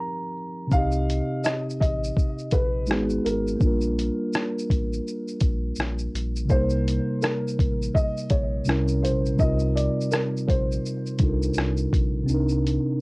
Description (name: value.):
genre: lo-fi hip hop.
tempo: 83 BPM.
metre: 4/4.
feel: swing 64% on 16ths.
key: C minor.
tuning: A4 = 443 Hz.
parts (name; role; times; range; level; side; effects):
felt-muted upright piano; melody; 0.0-11.5 s; Bb4 to F5; -30 LUFS; equal; low-pass filter, plate reverb.
mellow tine electric piano; accompaniment; 0.0-13.0 s; C3 to Bb5; -26 LUFS; equal; cassette tape, low-pass filter, plate reverb.
saturated sub bass; bass; 0.7-12.8 s; Ab1 to C2; -28 LUFS; equal; none.
lo-fi sampler-style drum kit; drums; 0.7-12.9 s; hi-hat, kick drum, rim click, shaker; -24 LUFS; equal; vintage 12-bit sampler grit.
room: light reverb.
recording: home recording on cassette.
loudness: -22 LUFS.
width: side -25 dB against mid.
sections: 0.0-12.3 A section.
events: tine electric piano fill 0.0-0.7; kick muted 12.3-13.0.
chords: 0.0 F9sus4; 0.7 Cm7; 2.9 Abm9; 3.6 Gm7; 6.5 Cm7; 8.7 C7b9; 9.4 Cm11; 12.3 Cm7.